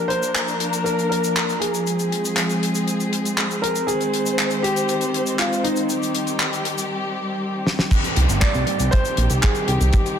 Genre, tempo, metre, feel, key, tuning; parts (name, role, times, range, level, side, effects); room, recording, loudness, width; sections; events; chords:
italo disco; 119 BPM; 4/4; straight; C minor; A4 = 438 Hz
warm concert grand piano; melody; 0.0-10.2 s; Eb4 to D5; -24 LUFS; left 1 dB; digital delay
warm studio string section; sustained chords; 0.0-10.2 s; Eb3 to C5; -24 LUFS; equal; low-pass filter
damped 70s drum kit; drums; 0.1-10.2 s; cabasa, crash cymbal, handclaps, hi-hat, snare drum; -24 LUFS; left 1 dB; gated reverb
kick drum; drums; 7.9-10.0 s; -18 LUFS; equal
downlifter; sound effects; 7.9-10.2 s; -29 LUFS; right 2 dB
chorused synth bass; bass; 8.2-9.9 s; G1 to C2; -19 LUFS; equal
moderate plate reverb, RT60 2.1 s; -18 LUFS; side -8 dB against mid
0.0-7.9 A section; 7.9-10.2 B section
filter sweep on string section 0.0-7.9; drum fill 7.7
0.0 Bb; 1.9 Fm; 3.9 Ab; 5.9 Cm